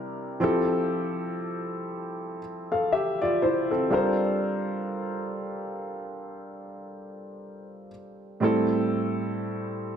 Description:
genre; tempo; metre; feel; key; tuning
R&B; 60 BPM; 4/4; swing 58% on 16ths; unclear; A4 = 440 Hz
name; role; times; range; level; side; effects
warm concert grand piano; solo; 0.0-10.0 s; A2 to F5; -26 LUFS; equal; none
room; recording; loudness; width
moderate lush hall reverb, RT60 2.5 s; dark, warm production; -25 LUFS; side -8 dB against mid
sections
0.4-10.0 A section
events
none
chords
0.4 Fmaj9; 3.9 Gm11; 8.4 Am7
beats
| 0.42 1.43 2.42 3.42 | 4.42 5.42 6.42 7.42 | 8.43 9.43

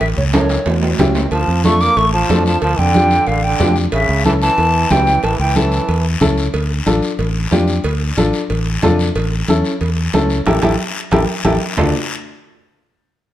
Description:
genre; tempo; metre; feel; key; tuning
latin, cumbia; 184 BPM; 4/4; straight; D harmonic minor; A4 = 440 Hz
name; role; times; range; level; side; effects
hollow concert flute; melody; 0.0-6.1 s; C#5 to D6; -17 LUFS; equal; none
fingered electric bass; bass; 0.0-11.9 s; A1 to F2; -18 LUFS; equal; none
congas; percussion; 0.0-11.8 s; none; -21 LUFS; right 2 dB; none
cowbell and timbales; percussion; 0.0-11.9 s; none; -23 LUFS; right 4 dB; none
guiro; percussion; 0.0-11.8 s; none; -27 LUFS; left 6 dB; none
warm upright piano; accompaniment; 0.3-11.9 s; C#4 to A4; -19 LUFS; left 2 dB; none
brilliant trombone; second line; 1.3-6.1 s; C#3 to Bb3; -22 LUFS; right 4 dB; none
room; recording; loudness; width
moderate large studio reverb, RT60 1.2 s; none; -13 LUFS; side -13 dB against mid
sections
0.0-6.5 A section; 6.5-11.8 B section; 11.8-13.1 C section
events
drum fill 0.3-1.3, 11.3-11.8; band accent 10.5-11.8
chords
0.0 A7; 1.3 Dm; 3.9 A7; 6.5 Dm; 9.2 A7; 11.8 Dm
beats
| 0.01 0.34 0.66 0.99 | 1.32 1.64 1.97 2.30 | 2.62 2.95 3.27 3.60 | 3.93 4.25 4.58 4.91 | 5.23 5.56 5.89 6.21 | 6.54 6.87 7.19 7.52 | 7.85 8.18 8.50 8.83 | 9.16 9.48 9.81 10.14 | 10.46 10.79 11.12 11.45 | 11.77

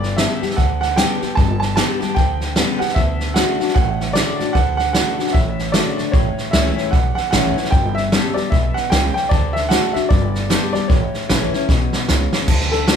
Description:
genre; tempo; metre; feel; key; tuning
rockabilly; 151 BPM; 4/4; swing 61% on 8ths; D major; A4 = 440 Hz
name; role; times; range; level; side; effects
warm upright piano; melody; 0.0-12.9 s; A4 to A5; -22 LUFS; right 3 dB; none
picked steel-string acoustic guitar; accompaniment; 0.0-13.0 s; E2 to G4; -22 LUFS; left 5 dB; none
upright bass; bass; 0.0-12.9 s; G1 to D2; -22 LUFS; right 1 dB; none
vintage drum kit; drums; 0.0-13.0 s; crash cymbal, hi-hat, kick drum, snare drum; -18 LUFS; equal; none
room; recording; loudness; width
light reverb; band playing live in one room; -15 LUFS; side -7 dB against mid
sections
0.0-12.5 A section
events
drum fill 11.7-12.5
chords
0.0 G; 3.0 D; 6.1 A; 7.7 G; 9.3 D; 10.1 G; 10.9 A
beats
0.19 0.58 0.98 | 1.38 1.77 2.17 2.57 | 2.96 3.36 3.76 4.15 | 4.55 4.95 5.34 5.74 | 6.14 6.54 6.93 7.33 | 7.73 8.12 8.52 8.92 | 9.31 9.71 10.11 10.50 | 10.90 11.29 11.69 12.09 | 12.48 12.88

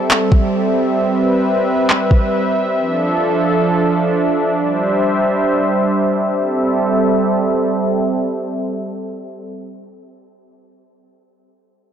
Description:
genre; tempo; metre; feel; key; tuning
hip hop, atmospheric cloud-rap; free time; none; none; A minor; A4 = 437 Hz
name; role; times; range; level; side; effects
warm analog pad; sustained chords; 0.0-9.5 s; F3 to E5; -15 LUFS; right 1 dB; chorus, sidechain pumping
smooth R&B drum kit; drums; 0.1-2.2 s; handclaps, kick drum; -16 LUFS; equal; none
room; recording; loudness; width
light reverb; blown-out, overdriven recording, overdrive, low-pass filter; -14 LUFS; side -8 dB against mid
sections
0.0-6.4 A section; 6.4-9.9 B section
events
filter sweep 0.0-6.4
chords
0.0 Am7; 2.8 Dmadd9; 4.6 Cadd9; 6.4 Am7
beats
free time

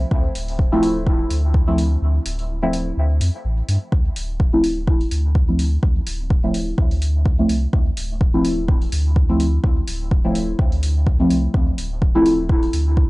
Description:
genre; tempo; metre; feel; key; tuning
dub techno; 126 BPM; 4/4; swing 55% on 16ths; D minor; A4 = 440 Hz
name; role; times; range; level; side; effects
warm sub bass; bass; 0.0-13.1 s; D1 to G2; -21 LUFS; equal; tube saturation, sidechain pumping
electronic kick drum; drums; 0.1-13.1 s; none; -18 LUFS; equal; none
electronic hi-hat; drums; 0.4-12.8 s; none; -32 LUFS; equal; none
deep mellow chord stab; stabs; 0.7-12.4 s; F3 to E4; -21 LUFS; equal; chorus, phaser, sidechain pumping, dub echo
room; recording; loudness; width
little or no reverb; dry, gritty hardware recording, cassette tape, nothing above 10.8 kHz; -16 LUFS; side -22 dB against mid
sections
0.0-3.9 A section; 3.9-13.1 A section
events
break 2.0-3.9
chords
0.0 Dm9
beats
| 0.11 0.59 1.07 1.54 | 2.02 2.50 2.97 3.45 | 3.92 4.40 4.88 5.35 | 5.83 6.30 6.78 7.26 | 7.73 8.21 8.69 9.16 | 9.64 10.11 10.59 11.07 | 11.54 12.02 12.49 12.97

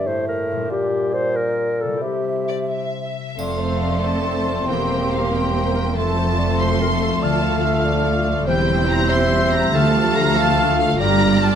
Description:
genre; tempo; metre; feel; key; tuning
classical, dramatic, fast romantic movement for symphony orchestra; 94 BPM (dotted quarters); 6/8; rubato; F major; A4 = 440 Hz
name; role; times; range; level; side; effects
mellow hollow concert flute; second line; 0.0-11.6 s; D5 to G6; -26 LUFS; equal; none
warm clarinet; second line; 0.0-11.6 s; G4 to F5; -25 LUFS; left 2 dB; none
warm bassoon; accompaniment; 0.0-11.6 s; A2 to C4; -26 LUFS; right 3 dB; none
concert harp; arpeggios; 0.0-11.6 s; E2 to A5; -26 LUFS; left 10 dB; none
rich symphonic violin section; melody; 2.5-11.6 s; D5 to C6; -25 LUFS; equal; none
clear symphonic violin section; second line; 3.4-11.6 s; E4 to F5; -29 LUFS; left 1 dB; none
warm symphonic viola section; accompaniment; 3.4-11.6 s; F3 to A4; -28 LUFS; right 2 dB; none
mellow French horn section; sustained chords; 3.4-11.6 s; G3 to G4; -27 LUFS; left 3 dB; none
rich studio cello section; bass; 3.4-11.6 s; D2 to G2; -24 LUFS; right 3 dB; none
rich symphonic double bass section; bass; 3.4-11.6 s; E1 to D2; -24 LUFS; right 4 dB; none
triangle and cymbal swell; percussion; 3.4-4.2, 11.0-11.6 s; none; -45 LUFS; right 2 dB; none
room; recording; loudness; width
moderate recital hall reverb, RT60 1.6 s; none; -17 LUFS; side -8 dB against mid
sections
0.0-3.4 A section; 3.4-11.6 B section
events
none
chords
0.0 Gm7; 0.7 Gm/Bb; 2.0 C; 3.4 F; 4.7 C7/E; 6.0 F; 7.2 Dm; 8.5 C/E; 9.7 Dm; 11.0 Gm7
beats
0.07 | 0.70 1.35 | 2.02 2.71 | 3.39 4.04 | 4.69 5.33 | 5.97 6.61 | 7.23 7.86 | 8.48 9.10 | 9.74 10.37 | 10.99

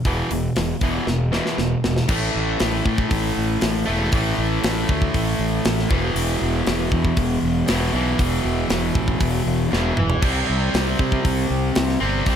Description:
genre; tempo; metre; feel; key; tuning
hard rock; 118 BPM; 4/4; straight; unclear; A4 = 440 Hz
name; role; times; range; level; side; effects
cranked stack guitar; riff; 0.0-12.4 s; E2 to C4; -22 LUFS; equal; overdrive
tight metal drum kit; drums; 0.0-12.4 s; crash cymbal, hi-hat, kick drum, snare drum, toms; -24 LUFS; equal; none
fuzz fingered electric bass; bass; 0.1-12.4 s; E1 to C3; -24 LUFS; equal; overdrive
room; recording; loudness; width
light reverb, small room reverb; none; -18 LUFS; side -8 dB against mid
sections
0.0-2.1 A section; 2.1-12.4 B section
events
drum fill 1.1-2.1, 9.7-10.2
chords
0.0 E5; 2.1 A5; 5.9 E5; 10.2 C5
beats
| 0.05 0.56 1.07 1.58 | 2.09 2.60 3.11 3.62 | 4.12 4.63 5.14 5.65 | 6.16 6.67 7.17 7.68 | 8.19 8.70 9.21 9.72 | 10.23 10.73 11.24 11.75 | 12.26

